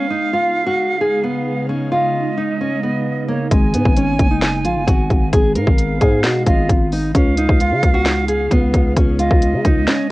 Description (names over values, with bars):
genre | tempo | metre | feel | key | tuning
hip hop, trap | 132 BPM | 4/4 | half-time | unclear | A4 = 441 Hz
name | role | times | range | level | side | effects
nylon-string guitar | melody | 0.0-10.1 s | G#3 to A#4 | -19 LUFS | equal | low-pass filter, cassette tape
bright silver concert flute | second line | 0.0-10.1 s | C#5 to G#5 | -25 LUFS | right 5 dB | analog delay
ethereal airy pad | sustained chords | 0.0-10.1 s | C#3 to E#5 | -25 LUFS | right 1 dB | ensemble chorus, built-in reverb, phaser
growling 808-style bass | bass | 3.5-9.9 s | F#1 to C#3 | -19 LUFS | equal | none
trap drum kit | drums | 3.5-10.0 s | hi-hat, kick drum, snare drum | -16 LUFS | equal | vintage 12-bit sampler grit, cassette tape
room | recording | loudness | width
light reverb | home recording on cassette | -14 LUFS | side -19 dB against mid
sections
0.0-10.1 A section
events
none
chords
0.0 C#add9; 3.5 G#m; 7.1 C#add9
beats
0.33 0.78 1.24 | 1.69 2.15 2.60 3.06 | 3.51 3.97 4.42 4.88 | 5.33 5.78 6.24 6.69 | 7.15 7.60 8.06 8.51 | 8.97 9.42 9.88